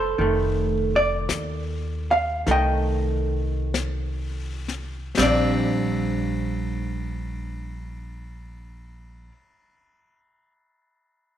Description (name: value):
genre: jazz ballad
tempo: 39-57 BPM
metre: 4/4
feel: swing 68% on 8ths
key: Bb major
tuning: A4 = 440 Hz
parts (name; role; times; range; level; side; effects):
- vintage hollow-body jazz guitar; accompaniment; 0.0-9.3 s; Eb3 to G5; -24 LUFS; right 1 dB; none
- upright bass; bass; 0.0-9.3 s; F1 to Eb2; -27 LUFS; equal; none
- jazz brush drum kit; drums; 0.2-5.9 s; brushed snare drum, hi-hat, ride cymbal, snare drum; -30 LUFS; left 5 dB; none
room: moderate echo chamber reverb, RT60 2.1 s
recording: 1960s-style stereo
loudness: -22 LUFS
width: side -10 dB against mid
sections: 0.2-5.2 A section; 5.2-11.2 B section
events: slowing down 0.0-5.2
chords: 0.2 F13; 5.2 Bb69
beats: | 0.18 1.28 2.46 3.74 | 5.18 6.70 8.21